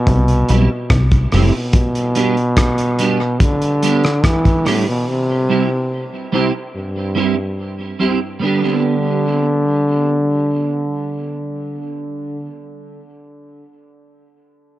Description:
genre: dub reggae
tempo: 72 BPM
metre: 4/4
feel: straight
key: G major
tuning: A4 = 436 Hz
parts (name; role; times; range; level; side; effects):
- warm trombone; melody; 0.0-12.5 s; G2 to E3; -18 LUFS; equal; tape echo
- plucky analog bass; bass; 0.1-1.5 s; F#1 to C2; -13 LUFS; equal; none
- cloth-damped thuddy drum kit; drums; 0.1-4.9 s; hi-hat, kick drum, rim click; -17 LUFS; equal; none
- clean electric guitar; accompaniment; 0.5-13.1 s; G3 to G4; -21 LUFS; right 4 dB; ensemble chorus, tape echo
room: light reverb, small room ambience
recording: dark, warm production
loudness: -14 LUFS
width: side -14 dB against mid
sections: 0.0-8.4 A section; 8.4-11.7 B section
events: none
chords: 0.0 C; 1.7 G; 5.1 C; 8.4 G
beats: 0.07 0.90 | 1.74 2.57 3.40 4.24 | 5.07 5.90 6.74 7.57 | 8.40 9.23 10.07 10.90

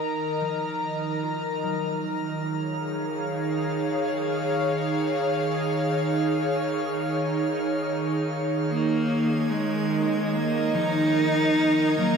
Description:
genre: ambient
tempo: free time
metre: none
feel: none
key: unclear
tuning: A4 = 440 Hz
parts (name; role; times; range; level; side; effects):
- airy breathy pad; sustained chords; 0.0-12.2 s; Eb3 to Bb5; -24 LUFS; right 1 dB; chorus
- organ-like drone; drone; 1.6-12.2 s; Eb3; -38 LUFS; left 1 dB; none
- drifting glass-harmonics texture; texture; 0.0-12.2 s; F6 to Ab6; -40 LUFS; left 2 dB; chorus, built-in reverb
- concert harp; arpeggios; 0.4-4.6, 10.7-12.2 s; F3 to Bb4; -35 LUFS; left 5 dB; tape echo
- clear cello; melody; 8.7-12.2 s; Ab3 to Eb4; -24 LUFS; equal; none
room: wet shimmer reverb, RT60 7.8 s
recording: none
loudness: -23 LUFS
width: side -6 dB against mid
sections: 0.0-12.2 A section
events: fade-in on harp 0.0-12.2; fade-in on synth texture 0.0-12.2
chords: 0.0 Ebm; 2.0 Db/Eb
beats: free time

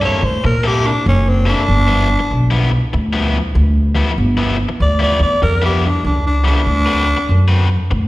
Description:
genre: electric blues shuffle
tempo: 96 BPM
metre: 4/4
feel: swing 64% on 8ths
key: G mixolydian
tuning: A4 = 435 Hz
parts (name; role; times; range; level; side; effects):
- growling tenor saxophone; melody; 0.0-7.7 s; C4 to D5; -17 LUFS; equal; plate reverb, slapback echo
- cranked stack guitar; riff; 0.0-7.9 s; G2 to B4; -20 LUFS; left 4 dB; overdrive, slapback echo
- upright bass; bass; 0.0-8.1 s; F#1 to Bb2; -14 LUFS; equal; none
room: little or no reverb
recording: live gig heard through the venue's PA, recital hall reverb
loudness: -12 LUFS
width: side -18 dB against mid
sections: 0.0-8.1 A section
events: none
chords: 0.0 C6; 1.7 G6; 6.7 D6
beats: 0.44 1.06 | 1.69 2.31 2.93 3.55 | 4.17 4.79 5.42 6.04 | 6.66 7.28 7.90

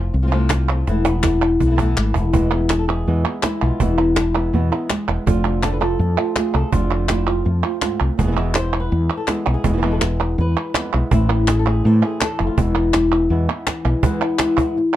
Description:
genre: flamenco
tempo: 164 BPM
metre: 4/4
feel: straight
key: E phrygian dominant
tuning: A4 = 440 Hz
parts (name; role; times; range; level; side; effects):
- flamenco guitar; melody; 0.0-15.0 s; E2 to C5; -22 LUFS; left 2 dB; none
- woody fretless electric bass; bass; 0.0-13.9 s; E1 to A2; -19 LUFS; equal; none
- palmas hand claps; percussion; 0.3-15.0 s; none; -24 LUFS; right 3 dB; none
- cajon; percussion; 0.5-14.8 s; none; -21 LUFS; right 3 dB; none
- flamenco guitar; stabs; 2.3-14.0 s; B2 to F4; -24 LUFS; right 4 dB; none
room: light reverb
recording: dark, warm production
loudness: -16 LUFS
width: side -13 dB against mid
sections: 0.0-2.3 A section; 2.3-14.0 B section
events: drum fill 0.9-2.3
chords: 0.0 F; 0.9 Esus4; 5.3 F6; 8.2 E; 11.1 Am; 12.6 E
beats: 0.13 0.50 | 0.87 1.23 1.60 1.97 | 2.33 2.70 3.07 3.43 | 3.80 4.16 4.53 4.90 | 5.26 5.63 5.99 6.36 | 6.72 7.09 7.46 7.82 | 8.19 8.55 8.92 9.28 | 9.65 10.02 10.38 10.75 | 11.11 11.48 11.84 12.21 | 12.57 12.94 13.30 13.67 | 14.03 14.39 14.76

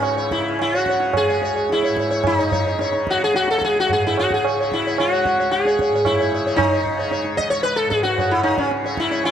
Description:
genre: indian classical, Hindustani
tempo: 111 BPM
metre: 4/4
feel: straight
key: C# raga darbari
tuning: A4 = 440 Hz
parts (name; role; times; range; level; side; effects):
- sitar; melody; 0.0-9.3 s; C#4 to D#5; -18 LUFS; left 1 dB; tape echo
- tanpura; drone; 0.0-9.3 s; C#2 to C#3; -29 LUFS; left 1 dB; none
- tabla; percussion; 0.0-9.3 s; none; -25 LUFS; right 4 dB; none
room: light reverb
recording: dark, warm production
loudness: -17 LUFS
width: side -9 dB against mid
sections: 0.0-9.3 A section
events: speeding up 0.0-9.3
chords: none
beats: | 0.03 0.59 1.15 1.70 | 2.25 2.80 3.35 3.90 | 4.44 4.98 5.52 6.06 | 6.59 7.13 7.66 8.19 | 8.72 9.24

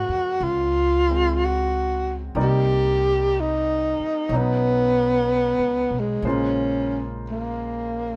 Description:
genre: jazz ballad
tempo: 62 BPM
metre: 4/4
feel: swing 68% on 8ths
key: unclear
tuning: A4 = 441 Hz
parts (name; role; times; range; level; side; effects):
- breathy tenor saxophone; melody; 0.0-8.2 s; Ab3 to G4; -24 LUFS; equal; none
- warm concert grand piano; accompaniment; 0.0-8.2 s; Db3 to F5; -33 LUFS; equal; none
- upright bass; bass; 0.0-8.1 s; Bb1 to F2; -29 LUFS; equal; none
room: light reverb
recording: none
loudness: -22 LUFS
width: mono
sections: 0.0-8.2 A section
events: none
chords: 0.0 Gbmaj9; 2.4 Cm7; 4.3 Badd9; 6.2 Bbm9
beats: 0.41 1.39 | 2.36 3.33 4.30 5.27 | 6.25 7.22

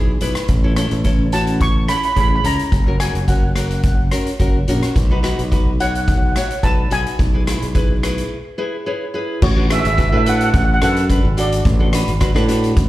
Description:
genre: calypso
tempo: 107 BPM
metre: 4/4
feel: straight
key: unclear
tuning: A4 = 443 Hz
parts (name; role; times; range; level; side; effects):
- nylon-string guitar; accompaniment; 0.0-12.8 s; B3 to E5; -24 LUFS; left 1 dB; slapback echo
- modern bright fingered electric bass; bass; 0.0-12.9 s; F#1 to A2; -19 LUFS; equal; none
- street-band drum kit; drums; 0.2-12.9 s; crash cymbal, hi-hat, kick drum, rim click; -18 LUFS; equal; none
- steel pan; melody; 1.3-12.5 s; F#4 to C#6; -21 LUFS; right 1 dB; slapback echo
room: small room ambience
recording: live gig heard through the venue's PA, club reverb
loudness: -14 LUFS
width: side -16 dB against mid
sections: 0.0-9.4 A section; 9.4-12.9 B section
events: break 8.3-9.4; nylon-string guitar fill 8.3-9.4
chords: 0.5 A; 2.7 F#; 5.0 B; 7.2 E/B; 9.4 Bm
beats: | 0.49 1.05 1.60 2.16 | 2.72 3.28 3.84 4.40 | 4.96 5.52 6.08 6.63 | 7.19 7.75 8.31 8.87 | 9.43 9.98 10.54 11.10 | 11.65 12.21 12.77

